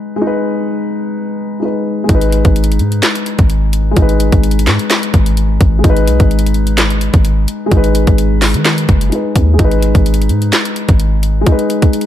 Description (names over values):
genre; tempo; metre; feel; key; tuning
hip hop, trap; 128 BPM; 4/4; half-time; G# minor; A4 = 440 Hz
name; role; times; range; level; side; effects
dark concert grand piano; accompaniment; 0.0-12.1 s; G#3 to B4; -16 LUFS; left 2 dB; none
warm 808-style bass; bass; 2.1-11.4 s; F#1 to D#3; -13 LUFS; equal; none
trap drum kit; drums; 2.1-12.1 s; handclaps, hi-hat, kick drum, snare drum; -12 LUFS; equal; none
room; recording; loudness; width
little or no reverb; dark, warm production; -10 LUFS; side -11 dB against mid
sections
0.0-2.1 A section; 2.1-12.1 B section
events
none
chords
0.0 G#m